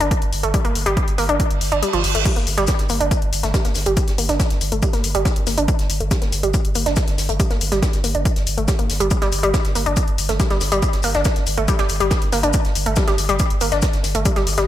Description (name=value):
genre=driving peak-time techno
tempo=140 BPM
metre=4/4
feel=straight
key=G minor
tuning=A4 = 440 Hz
part: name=analog pluck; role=riff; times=0.0-14.6 s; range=F3 to D4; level=-21 LUFS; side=equal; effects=chorus, sidechain pumping, ping-pong delay
part: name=saturated sub bass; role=bass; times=0.0-14.7 s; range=G1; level=-24 LUFS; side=equal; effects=overdrive, sidechain pumping, low-pass filter
part: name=punchy analog drum machine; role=drums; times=0.0-14.7 s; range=crash cymbal, hi-hat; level=-27 LUFS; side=left 5 dB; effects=overdrive
part: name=electronic kick drum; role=drums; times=0.1-14.3 s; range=none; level=-20 LUFS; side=equal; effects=none
part: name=reverse cymbal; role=sound effects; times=1.6-2.3 s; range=none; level=-26 LUFS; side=right 7 dB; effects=none
part: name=compact cocktail drum kit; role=drums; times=2.3-14.7 s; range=hi-hat, shaker, snare drum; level=-30 LUFS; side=left 1 dB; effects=sidechain pumping on hats, high-pass filter on hats, high-pass filter on snare, sidechain pumping on perc, high-pass filter on perc, high-pass filter on room, gated reverb
room=light reverb, studio ambience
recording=bright 1980s-style digital production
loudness=-16 LUFS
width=side -12 dB against mid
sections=0.0-14.7 A section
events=reverse cymbal 1.6-2.3; kick drops out 1.8-2.3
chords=0.0 G5